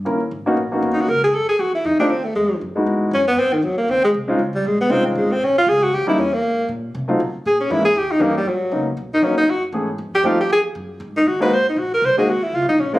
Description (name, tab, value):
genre	jazz, small-group swing and bop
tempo	236 BPM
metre	4/4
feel	swing 58% on 8ths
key	unclear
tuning	A4 = 439 Hz
part	upright bass	bass	0.0-13.0 s	G#1 to C3	-32 LUFS	equal	none
part	warm concert grand piano	accompaniment	0.1-13.0 s	E3 to A#4	-19 LUFS	left 1 dB	none
part	mellow tenor saxophone	melody	0.9-13.0 s	D#3 to B#4	-17 LUFS	equal	plate reverb
room	moderate studio reverb, RT60 0.8 s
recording	recorded on a phone in the room, club reverb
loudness	-16 LUFS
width	side -17 dB against mid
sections	0.3-8.5 A section; 8.5-13.0 A section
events	tenor saxophone solo 0.3-13.0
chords	0.3 G#m11; 1.3 Eadd9; 1.8 F9; 2.4 Emaj9; 3.4 G#; 4.4 C#maj9; 5.4 A#m; 5.9 D#7b9; 6.4 G#sus2; 6.9 F7b9; 7.4 A#m7b5; 8.0 D#7b9; 8.5 G#m11; 9.5 F#m11; 10.0 F9; 10.5 Emaj9; 11.5 G#7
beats	0.06 | 0.32 0.57 0.83 1.08 | 1.34 1.59 1.85 2.10 | 2.36 2.61 2.87 3.12 | 3.38 3.63 3.88 4.14 | 4.39 4.65 4.90 5.16 | 5.41 5.67 5.92 6.17 | 6.43 6.68 6.94 7.19 | 7.45 7.70 7.96 8.21 | 8.46 8.72 8.97 9.23 | 9.48 9.73 9.99 10.24 | 10.50 10.75 11.01 11.26 | 11.51 11.77 12.02 12.28 | 12.53 12.79